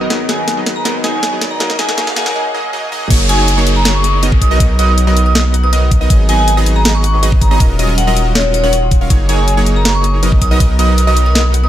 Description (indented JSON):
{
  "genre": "future bass",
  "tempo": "160 BPM",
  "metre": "4/4",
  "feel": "half-time",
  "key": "F# major",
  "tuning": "A4 = 445 Hz",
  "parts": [
    { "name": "clear concert grand piano", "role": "accompaniment", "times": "0.0-3.1 s", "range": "A#3 to A#4", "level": "-24 LUFS", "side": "left 4 dB", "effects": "sidechain pumping, ping-pong delay" },
    { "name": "ethereal airy pad", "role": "sustained chords", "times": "0.0-2.3 s", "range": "D#3 to F#4", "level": "-33 LUFS", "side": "equal", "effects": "none" },
    { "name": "supersaw stab", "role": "riff", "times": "0.0-11.7 s", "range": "F#3 to E#5", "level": "-18 LUFS", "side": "right 2 dB", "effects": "sidechain pumping, low-pass filter" },
    { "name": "saturated sub bass", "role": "bass", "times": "0.0-11.7 s", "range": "D#1 to B1", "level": "-14 LUFS", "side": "equal", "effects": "sidechain pumping" },
    { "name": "riser and downlifter", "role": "sound effects", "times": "0.0-6.1 s", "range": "none", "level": "-24 LUFS", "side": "equal", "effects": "none" },
    { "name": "trap drum kit", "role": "drums", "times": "0.1-11.6 s", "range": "crash cymbal, hi-hat, snare drum, toms", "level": "-18 LUFS", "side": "left 1 dB", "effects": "none" },
    { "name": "vibraphone with hard mallets", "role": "melody", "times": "0.3-11.7 s", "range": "C#5 to D#6", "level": "-19 LUFS", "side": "equal", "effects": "sidechain pumping, ping-pong delay" },
    { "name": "concert harp", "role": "arpeggios", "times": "3.1-11.7 s", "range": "D#4 to F#5", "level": "-26 LUFS", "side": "left 4 dB", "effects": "sidechain pumping, ping-pong delay" },
    { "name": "wide unison pluck", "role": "arpeggios", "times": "3.1-11.7 s", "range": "C#5 to E#5", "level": "-26 LUFS", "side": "right 1 dB", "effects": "sidechain pumping, ping-pong delay" },
    { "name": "electronic kick drum", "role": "drums", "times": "3.1-10.7 s", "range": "none", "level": "-11 LUFS", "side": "equal", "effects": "none" }
  ],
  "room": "light reverb, digital ambience",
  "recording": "high-pass filter",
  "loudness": "-10 LUFS",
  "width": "side -12 dB against mid",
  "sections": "0.0-3.1 A section; 3.1-11.7 B section",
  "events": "build-up 0.0-3.1; drum fill 0.0-2.4, 2.9; filter sweep on supersaw synth 0.0-3.1; break 2.4-3.1; drop 3.1-11.7",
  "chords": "0.1 G#m7; 1.6 D#m9; 3.1 F#69; 4.4 Bmaj7; 6.1 G#m7; 7.6 D#m9; 9.1 F#69; 10.4 Bmaj7"
}